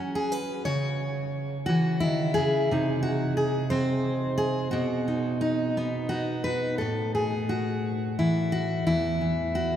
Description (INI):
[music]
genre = folk, solo fingerstyle acoustic guitar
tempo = 59 BPM (dotted quarters)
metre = 6/8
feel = rubato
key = unclear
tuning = A4 = 442 Hz
[part]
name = fingerpicked steel-string acoustic guitar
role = solo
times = 0.0-9.8 s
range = E2 to C#5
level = -24 LUFS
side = equal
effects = none
[sound]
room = wet cathedral reverb, RT60 5.5 s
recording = in a vast, echoing space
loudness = -24 LUFS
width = side -10 dB against mid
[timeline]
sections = 0.0-6.8 A section; 6.8-9.8 B section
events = none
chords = 0.0 F#sus2; 0.7 C#m; 2.7 G#/B#; 4.7 B; 6.8 A5; 8.9 N.C.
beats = | 0.66 1.68 | 2.69 3.71 | 4.72 5.76 | 6.80 7.84 | 8.86